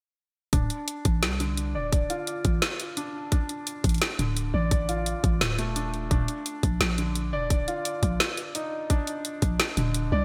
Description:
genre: half-time drum and bass.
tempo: 172 BPM.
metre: 4/4.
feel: swing 58% on 16ths, half-time.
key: D phrygian.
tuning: A4 = 439 Hz.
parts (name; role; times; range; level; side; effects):
felt-muted upright piano; arpeggios; 0.5-10.2 s; D3 to D5; -34 LUFS; equal; vintage 12-bit sampler grit, low-pass filter, delay.
growling 808-style bass; bass; 0.5-10.2 s; D1 to C2; -30 LUFS; equal; none.
drum and bass drum kit; drums; 0.5-10.0 s; hi-hat, snare drum; -31 LUFS; equal; gated reverb.
electronic kick drum; drums; 0.5-9.5 s; none; -26 LUFS; equal; none.
room: moderate lush hall reverb, RT60 1.9 s.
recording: bright 1980s-style digital production.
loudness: -27 LUFS.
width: mono.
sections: 0.5-10.2 A section.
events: none.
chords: 0.5 Dm; 6.1 Ebsus2.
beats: | 0.53 0.88 1.23 1.57 | 1.92 2.27 2.62 2.97 | 3.32 3.67 4.02 4.37 | 4.71 5.06 5.41 5.76 | 6.11 6.46 6.81 7.16 | 7.51 7.86 8.20 8.55 | 8.90 9.25 9.60 9.95.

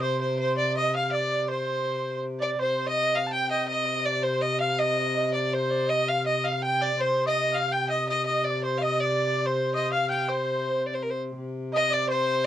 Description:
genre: medieval dance.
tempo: 164 BPM.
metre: 3/4.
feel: straight.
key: C minor.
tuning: A4 = 439 Hz.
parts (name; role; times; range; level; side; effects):
clear fiddle; melody; 0.0-12.5 s; Bb4 to G5; -26 LUFS; left 1 dB; none.
alto recorder; second line; 0.0-2.2, 7.0-12.5 s; C6 to G6; -33 LUFS; left 4 dB; cassette tape.
clear erhu; second line; 0.0-12.5 s; C5 to A5; -30 LUFS; right 4 dB; cassette tape.
warm viola da gamba; drone; 0.0-12.5 s; C3; -31 LUFS; left 1 dB; stereo widening, cassette tape.
room: wet booth ambience, RT60 0.2 s.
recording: home recording on cassette.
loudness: -24 LUFS.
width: side -11 dB against mid.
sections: 0.0-2.6 A section; 2.6-11.4 B section; 11.4-12.5 C section.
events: none.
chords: none.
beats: 0.02 | 0.39 0.76 1.12 | 1.49 1.86 2.23 | 2.59 2.96 3.33 | 3.69 4.06 4.43 | 4.79 5.16 5.53 | 5.89 6.26 6.62 | 6.99 7.36 7.72 | 8.09 8.45 8.82 | 9.18 9.55 9.91 | 10.28 10.64 11.01 | 11.37 11.73 12.10 | 12.46.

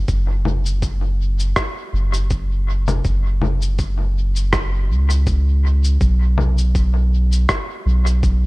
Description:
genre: ambient dub.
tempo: 81 BPM.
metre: 4/4.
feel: swing 55% on 16ths.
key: unclear.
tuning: A4 = 440 Hz.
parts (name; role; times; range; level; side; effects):
soft dub sub bass; bass; 0.0-8.5 s; F#1 to C#2; -16 LUFS; equal; none.
electronic cabasa, congas and rim click; drums; 0.1-8.4 s; none; -24 LUFS; left 2 dB; dub echo.
electronic kick drum; drums; 0.1-8.4 s; none; -22 LUFS; equal; none.
room: little or no reverb.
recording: echo-heavy mix.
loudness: -16 LUFS.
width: side -22 dB against mid.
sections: 0.0-8.5 A section.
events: none.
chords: none.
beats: | 0.08 0.82 1.56 2.31 | 3.04 3.79 4.53 5.27 | 6.01 6.75 7.49 8.23.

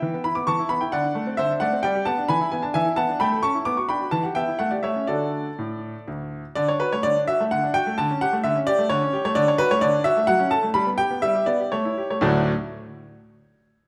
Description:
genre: classical-period piano sonatina.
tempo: 115-133 BPM.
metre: 3/4.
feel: rubato.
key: D major.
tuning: A4 = 440 Hz.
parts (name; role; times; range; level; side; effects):
clear baby grand piano; solo; 0.0-12.5 s; D2 to D6; -23 LUFS; equal; none.
room: wet recital hall reverb, RT60 1.5 s.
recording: none.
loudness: -22 LUFS.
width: mono.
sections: 0.0-6.6 A section; 6.6-12.2 B section; 12.2-13.7 C section.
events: slowing down 8.7-12.2.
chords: 0.0 Em; 0.9 D7; 1.8 G; 2.3 E7; 3.2 A; 3.7 Bm; 4.1 Em; 4.6 A7; 5.1 D; 8.0 A7/D; 9.4 D; 10.3 F#m; 10.8 G; 11.7 A7; 12.2 D.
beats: 0.02 0.48 | 0.93 1.38 1.84 | 2.29 2.75 3.20 | 3.66 4.12 4.60 | 5.08 5.58 6.07 | 6.56 7.04 7.51 | 7.98 8.44 8.90 | 9.36 9.82 10.29 | 10.76 11.23 11.73 | 12.24.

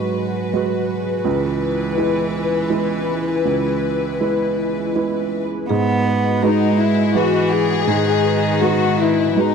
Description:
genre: neoclassical piano and strings.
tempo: 82 BPM.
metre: 3/4.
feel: rubato.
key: unclear.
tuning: A4 = 440 Hz.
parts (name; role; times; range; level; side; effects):
warm chamber violin section; melody; 0.0-9.5 s; D#4 to B4; -21 LUFS; left 10 dB; none.
warm cello; second line; 0.0-9.5 s; D#3 to B3; -23 LUFS; right 4 dB; tape echo.
felt-muted upright piano; accompaniment; 0.0-9.5 s; C#2 to B4; -21 LUFS; right 6 dB; none.
phased analog pad; sustained chords; 0.0-9.5 s; G#3 to B4; -27 LUFS; left 2 dB; phaser, chorus.
marimba with medium mallets; arpeggios; 5.7-9.5 s; G#4 to F#5; -27 LUFS; left 15 dB; tape echo.
room: light reverb.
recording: dry, close 1970s-style studio recording.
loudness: -16 LUFS.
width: side -6 dB against mid.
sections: 0.0-5.7 A section; 5.7-9.5 B section.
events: none.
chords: 0.0 G#m7; 1.3 C#m7; 5.7 G#m7.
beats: 0.54 | 1.26 1.98 2.71 | 3.45 4.20 4.95 | 5.70 6.43 7.16 | 7.88 8.62 9.37.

